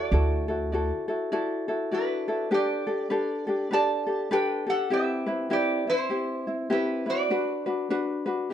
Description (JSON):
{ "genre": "Hawaiian", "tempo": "100 BPM", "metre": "4/4", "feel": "swing 61% on 8ths", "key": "G major", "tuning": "A4 = 440 Hz", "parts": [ { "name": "metal-body resonator slide guitar", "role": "melody", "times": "0.0-8.5 s", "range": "D4 to A5", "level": "-29 LUFS", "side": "right 2 dB", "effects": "plate reverb" }, { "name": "ukulele", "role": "accompaniment", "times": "0.0-8.5 s", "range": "C4 to D5", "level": "-26 LUFS", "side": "left 2 dB", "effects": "none" }, { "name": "upright bass", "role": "bass", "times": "0.1-0.9 s", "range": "D2", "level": "-25 LUFS", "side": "right 1 dB", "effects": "none" } ], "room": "moderate small room reverb, RT60 0.6 s", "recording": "dark, warm production", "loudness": "-24 LUFS", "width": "side -10 dB against mid", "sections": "0.0-2.5 A section; 2.5-8.5 B section", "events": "break 1.3-2.5", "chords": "0.1 Dadd9; 2.5 Gadd9; 4.9 Cmaj7; 7.3 Gmaj7 (rootless)", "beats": "| 0.12 0.72 1.32 1.92 | 2.51 3.11 3.71 4.31 | 4.91 5.51 6.11 6.70 | 7.30 7.90 8.50" }